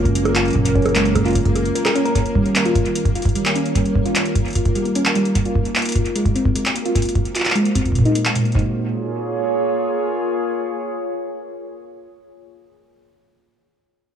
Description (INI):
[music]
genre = IDM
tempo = 150 BPM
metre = 4/4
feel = straight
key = Bb minor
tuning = A4 = 441 Hz
[part]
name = warbly tape-like pad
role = sustained chords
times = 0.0-12.5 s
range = Eb3 to Db5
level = -25 LUFS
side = right 1 dB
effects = chorus, built-in reverb, sidechain pumping
[part]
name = harp-like synth pluck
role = arpeggios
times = 0.0-8.7 s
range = Bb2 to Bb4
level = -20 LUFS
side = right 1 dB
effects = chorus, tape echo
[part]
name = warm sub bass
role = bass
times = 0.0-1.7 s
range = Gb1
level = -23 LUFS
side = equal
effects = tube saturation
[part]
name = pulsing gated texture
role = texture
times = 0.0-8.6 s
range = Bb3 to Bb4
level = -29 LUFS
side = left 2 dB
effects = chorus, built-in reverb, sidechain pumping
[part]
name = booming analog drum machine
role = drums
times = 0.1-8.6 s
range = bongos, handclaps, hi-hat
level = -23 LUFS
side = right 1 dB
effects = tape echo
[part]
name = electronic kick drum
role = drums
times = 0.1-8.6 s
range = none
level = -19 LUFS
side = equal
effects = none
[sound]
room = moderate echo chamber reverb, RT60 1.4 s, digital ambience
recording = echo-heavy mix, small room ambience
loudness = -16 LUFS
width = side -8 dB against mid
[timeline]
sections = 0.0-8.6 A section; 8.6-11.8 B section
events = filter sweep on synth pluck 0.0-8.6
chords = 0.0 Gbmaj7; 2.2 Eb7; 5.4 Ab7; 8.6 Bbm7